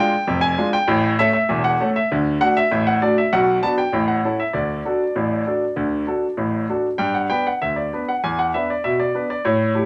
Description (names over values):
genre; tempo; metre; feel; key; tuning
ragtime piano; 98 BPM; 2/4; straight; D major; A4 = 441 Hz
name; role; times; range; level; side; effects
clear baby grand piano; solo; 0.0-9.9 s; E1 to A5; -20 LUFS; equal; none
room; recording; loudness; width
moderate small room reverb, RT60 0.5 s; none; -20 LUFS; mono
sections
0.0-7.0 A section; 7.0-9.9 B section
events
none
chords
0.0 Bb7 (rootless); 0.9 A; 2.1 D; 3.3 Bm; 3.9 A; 4.5 D; 7.0 G; 8.2 E5